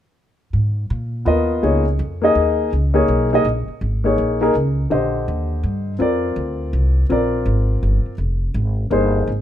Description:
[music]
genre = modal jazz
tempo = 165 BPM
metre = 3/4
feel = swing 65% on 8ths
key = unclear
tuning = A4 = 440 Hz
[part]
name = upright bass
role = bass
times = 0.5-9.4 s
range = E#1 to A#2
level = -19 LUFS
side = equal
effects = none
[part]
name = warm baby grand piano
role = accompaniment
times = 1.3-9.3 s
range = D3 to D#5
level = -18 LUFS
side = left 2 dB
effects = none
[sound]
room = little or no reverb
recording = close, detailed microphones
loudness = -16 LUFS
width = side -11 dB against mid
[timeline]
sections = 0.5-9.3 A section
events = none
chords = 0.5 G#sus24; 4.9 A#9sus4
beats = | 0.54 0.90 1.26 | 1.63 1.99 2.36 | 2.72 3.09 3.45 | 3.82 4.18 4.55 | 4.91 5.28 5.64 | 6.00 6.37 6.73 | 7.10 7.46 7.83 | 8.19 8.55 8.92 | 9.28

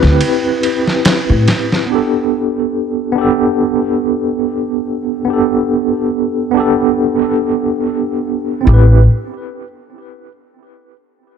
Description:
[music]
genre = trip hop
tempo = 71 BPM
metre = 4/4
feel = swing 56% on 16ths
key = A minor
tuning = A4 = 440 Hz
[part]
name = tine electric piano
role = accompaniment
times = 0.0-9.0 s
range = B3 to B4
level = -14 LUFS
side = right 1 dB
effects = medium stereo tremolo, tape echo
[part]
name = upright bass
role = bass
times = 0.0-1.5, 8.7-9.1 s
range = A1 to A2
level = -9 LUFS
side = equal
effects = none
[part]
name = trip hop sampler-style drum kit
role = drums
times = 0.0-1.9 s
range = ride cymbal, snare drum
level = -16 LUFS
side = equal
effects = none
[sound]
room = light reverb, digital ambience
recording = dark, warm production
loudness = -12 LUFS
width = side -7 dB against mid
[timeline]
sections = 0.0-8.7 A section; 8.7-11.4 B section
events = none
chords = 0.0 Am7 (rootless); 1.9 Gadd9; 8.7 Am7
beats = 0.21 1.06 | 1.90 2.75 3.59 4.44 | 5.28 6.13 6.97 7.82 | 8.66

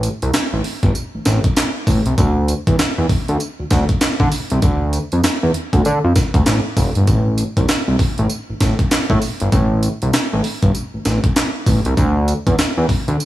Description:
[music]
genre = R&B, new jack swing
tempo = 98 BPM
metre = 4/4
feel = swing 61% on 16ths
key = A minor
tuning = A4 = 440 Hz
[part]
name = fat analog bass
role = bass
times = 0.0-13.2 s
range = F1 to D3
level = -16 LUFS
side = equal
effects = none
[part]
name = breakbeat sampler-style drum kit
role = drums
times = 0.0-13.3 s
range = handclaps, hi-hat, kick drum, snare drum, tambourine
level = -17 LUFS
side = equal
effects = none
[sound]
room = light reverb, digital ambience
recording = none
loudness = -15 LUFS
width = side -14 dB against mid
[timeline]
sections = 0.0-13.3 A section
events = none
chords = none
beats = 0.34 0.95 1.57 | 2.18 2.79 3.40 4.01 | 4.63 5.24 5.85 6.46 | 7.08 7.69 8.30 8.91 | 9.53 10.14 10.75 11.36 | 11.97 12.59 13.20

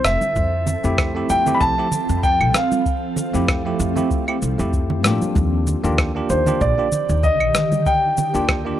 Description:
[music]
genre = sunset chillout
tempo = 96 BPM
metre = 4/4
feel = swing 55% on 16ths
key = unclear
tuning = A4 = 440 Hz
[part]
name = dark baby grand piano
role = melody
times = 0.0-8.8 s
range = C5 to B5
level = -20 LUFS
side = equal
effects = tape echo
[part]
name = ethereal airy pad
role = sustained chords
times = 0.0-8.8 s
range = D3 to A4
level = -25 LUFS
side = right 1 dB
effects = ensemble chorus, built-in reverb, phaser
[part]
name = upright bass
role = bass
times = 0.0-8.7 s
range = F1 to A2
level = -22 LUFS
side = equal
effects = none
[part]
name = electronic rim click, shaker and claves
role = drums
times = 0.0-8.6 s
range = none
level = -23 LUFS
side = equal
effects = overdrive
[part]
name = congas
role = percussion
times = 0.2-8.3 s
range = none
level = -27 LUFS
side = right 3 dB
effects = none
[part]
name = electronic kick drum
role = drums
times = 0.4-8.6 s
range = none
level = -23 LUFS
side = equal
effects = none
[part]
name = bell-like tine electric piano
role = accompaniment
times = 0.8-8.8 s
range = A3 to G4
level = -24 LUFS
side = moving between left 3 dB and right 5 dB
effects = auto-pan, analog delay
[sound]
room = little or no reverb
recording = dry, gritty hardware recording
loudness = -16 LUFS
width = side -12 dB against mid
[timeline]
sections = 0.0-8.8 A section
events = none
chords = 0.0 Fmaj7; 5.4 Ebmaj7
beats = | 0.36 0.98 1.61 2.23 | 2.86 3.48 4.11 4.73 | 5.36 5.98 6.61 7.23 | 7.86 8.48

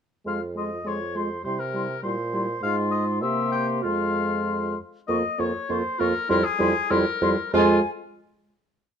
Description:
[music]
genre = quick classical-period movement for wind quintet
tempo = 99 BPM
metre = 2/4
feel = rubato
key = F minor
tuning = A4 = 440 Hz
[part]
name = mellow concert flute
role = melody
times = 0.3-7.9 s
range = Ab5 to Db6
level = -30 LUFS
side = left 7 dB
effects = none
[part]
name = warm oboe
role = second line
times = 0.3-7.8 s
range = F4 to G5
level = -28 LUFS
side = left 4 dB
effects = none
[part]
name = warm French horn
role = accompaniment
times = 0.3-7.8 s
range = G3 to Bb3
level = -28 LUFS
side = equal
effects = none
[part]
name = warm clarinet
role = accompaniment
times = 0.3-7.8 s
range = E4 to G4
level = -30 LUFS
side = right 9 dB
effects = none
[part]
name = mellow bassoon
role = bass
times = 0.3-7.8 s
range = F2 to C3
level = -28 LUFS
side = right 2 dB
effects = none
[sound]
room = moderate large studio reverb, RT60 0.9 s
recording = dark, warm production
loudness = -22 LUFS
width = side -7 dB against mid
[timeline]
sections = 0.3-5.1 A section; 5.1-7.5 coda; 7.5-8.8 final chord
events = none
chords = 0.3 Fm; 1.5 C; 2.0 C7/Bb; 2.6 Fm/Ab; 3.2 C7; 3.8 Fm; 5.1 Bbm/F; 6.3 C7/F (rootless); 7.5 Fm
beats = | 0.27 0.87 | 1.46 2.04 | 2.63 3.23 | 3.84 4.47 | 5.09 5.70 | 6.29 6.90 | 7.54

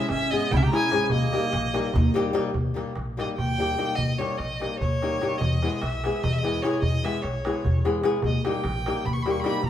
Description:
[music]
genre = balkan folk, Balkan wedding band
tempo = 295 BPM (eighths)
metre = 7/8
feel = straight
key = Eb phrygian dominant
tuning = A4 = 438 Hz
[part]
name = rich violin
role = melody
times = 0.0-9.7 s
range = Db5 to Db6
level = -29 LUFS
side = equal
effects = none
[part]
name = clear clarinet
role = second line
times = 0.0-2.1 s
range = Bb3 to G4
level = -30 LUFS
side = right 3 dB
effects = none
[part]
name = flamenco guitar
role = accompaniment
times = 0.0-9.6 s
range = G3 to Ab4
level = -27 LUFS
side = left 2 dB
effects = none
[part]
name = darbuka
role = percussion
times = 0.0-9.7 s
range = none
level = -29 LUFS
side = equal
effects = none
[part]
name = upright bass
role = bass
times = 0.1-9.7 s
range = Ab1 to E2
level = -28 LUFS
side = equal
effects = none
[sound]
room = wet large studio reverb, RT60 1.4 s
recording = band playing live in one room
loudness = -22 LUFS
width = side -10 dB against mid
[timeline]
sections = 0.0-2.5 A section; 2.5-9.7 B section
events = violin solo 2.5-9.7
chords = 0.0 Dbm; 1.1 Eb; 5.4 E; 8.2 Eb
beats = 0.09 0.29 0.50 0.70 0.91 | 1.11 1.32 1.52 1.73 1.93 2.14 2.34 | 2.54 2.75 2.95 3.16 3.36 3.57 3.77 | 3.98 4.18 4.38 4.59 4.79 5.00 5.20 | 5.40 5.60 5.81 6.01 6.21 6.42 6.62 | 6.82 7.02 7.22 7.43 7.63 7.83 8.03 | 8.23 8.43 8.63 8.84 9.04 9.24 9.44 | 9.64

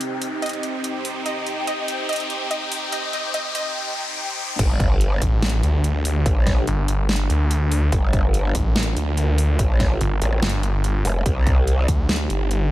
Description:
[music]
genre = heavy wobble dubstep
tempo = 144 BPM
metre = 4/4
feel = half-time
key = G minor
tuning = A4 = 441 Hz
[part]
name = wide unison pluck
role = melody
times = 0.0-3.7 s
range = Eb5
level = -29 LUFS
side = equal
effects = dub echo
[part]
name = lush unison pad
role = sustained chords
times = 0.0-12.7 s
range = C3 to G5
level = -30 LUFS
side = equal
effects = chorus, phaser, sidechain pumping
[part]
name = dubstep drum kit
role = drums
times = 0.0-12.6 s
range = crash cymbal, hi-hat, snare drum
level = -27 LUFS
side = right 1 dB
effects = high-pass filter on hats, high-pass filter on cymbals, high-pass filter on snare
[part]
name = riser and impact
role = sound effects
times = 0.0-6.3 s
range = none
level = -28 LUFS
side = left 1 dB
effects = none
[part]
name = growl bass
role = bass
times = 4.6-11.9 s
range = F1 to C2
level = -20 LUFS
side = equal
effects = chorus, overdrive
[part]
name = electronic kick drum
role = drums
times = 4.6-12.0 s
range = none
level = -20 LUFS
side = equal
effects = none
[part]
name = snarling distorted saw bass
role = bass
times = 5.2-12.7 s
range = G1 to D2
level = -20 LUFS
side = equal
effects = distortion, overdrive
[sound]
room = digital ambience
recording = high-pass filter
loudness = -19 LUFS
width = side -15 dB against mid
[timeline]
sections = 0.0-4.6 A section; 4.6-12.7 B section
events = build-up 0.0-4.6; riser 0.0-4.6; filter sweep on analog synth pad 0.0-4.6; filter sweep 0.0-4.6; drop 4.6-12.7; impact 4.6-6.3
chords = 0.0 Cm; 4.6 Gm; 11.3 Cm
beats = 0.01 0.42 0.84 | 1.26 1.68 2.09 2.51 | 2.92 3.34 3.76 4.17 | 4.59 5.01 5.42 5.84 | 6.26 6.67 7.09 7.51 | 7.92 8.34 8.76 9.18 | 9.59 10.01 10.43 10.84 | 11.26 11.68 12.09 12.51

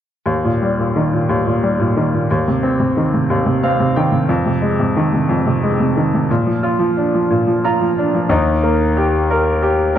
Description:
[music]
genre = six-eight pop ballad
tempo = 60 BPM (dotted quarters)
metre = 6/8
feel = straight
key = Eb major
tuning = A4 = 438 Hz
[part]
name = bright upright piano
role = accompaniment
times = 0.3-10.0 s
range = Eb2 to Bb5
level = -14 LUFS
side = equal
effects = none
[part]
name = clear concert grand piano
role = bass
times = 8.3-9.9 s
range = Eb2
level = -16 LUFS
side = left 2 dB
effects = none
[sound]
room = moderate recital hall reverb, RT60 1.6 s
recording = dark, warm production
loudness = -14 LUFS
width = side -10 dB against mid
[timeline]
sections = 0.3-8.3 A section; 8.3-10.0 B section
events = upright piano fill 3.3-4.3, 7.3-8.3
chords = 0.3 Eb; 2.3 Eb69; 4.3 Fm7; 6.3 Bb; 8.3 Eb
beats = | 0.28 1.28 | 2.28 3.29 | 4.29 5.29 | 6.29 7.30 | 8.30 9.30

